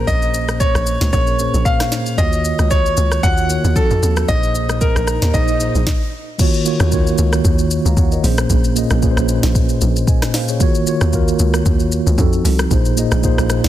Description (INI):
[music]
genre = amapiano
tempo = 114 BPM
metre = 4/4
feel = swing 55% on 16ths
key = Eb dorian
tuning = A4 = 440 Hz
[part]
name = clear grand piano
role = melody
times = 0.0-6.1 s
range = A4 to Gb5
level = -20 LUFS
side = equal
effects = tape echo
[part]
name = mellow tine electric piano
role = accompaniment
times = 0.0-13.7 s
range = Bb2 to Bb5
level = -19 LUFS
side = right 1 dB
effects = medium stereo tremolo
[part]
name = tight log drum bass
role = bass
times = 0.0-13.7 s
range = Bb1 to F2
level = -18 LUFS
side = equal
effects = none
[part]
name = afro-pop drum kit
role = drums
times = 0.1-13.7 s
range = crash cymbal, hi-hat, kick drum, rim click, shaker, snare drum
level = -18 LUFS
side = equal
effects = soft clipping on snare
[part]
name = swell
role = sound effects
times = 4.2-5.9 s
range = none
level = -29 LUFS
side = right 5 dB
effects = none
[sound]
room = little or no reverb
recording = dense, heavily limited modern master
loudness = -13 LUFS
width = side -12 dB against mid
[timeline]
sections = 0.0-6.4 A section; 6.4-13.7 B section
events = swell 4.2-6.4; stop 5.9-6.4; drop 6.4-13.7; tine electric piano fill 9.8-10.6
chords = 0.0 Bbm7; 2.2 Ebm9; 3.8 F7b9; 4.3 Bb9sus4; 6.4 Ebm9; 8.2 Bbm7; 10.6 Ebm9; 12.2 F7b9; 12.7 Bb9sus4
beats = | 0.08 0.60 1.13 1.66 | 2.18 2.71 3.23 3.76 | 4.29 4.81 5.34 5.87 | 6.39 6.92 7.45 7.97 | 8.50 9.03 9.55 10.08 | 10.60 11.13 11.66 12.18 | 12.71 13.23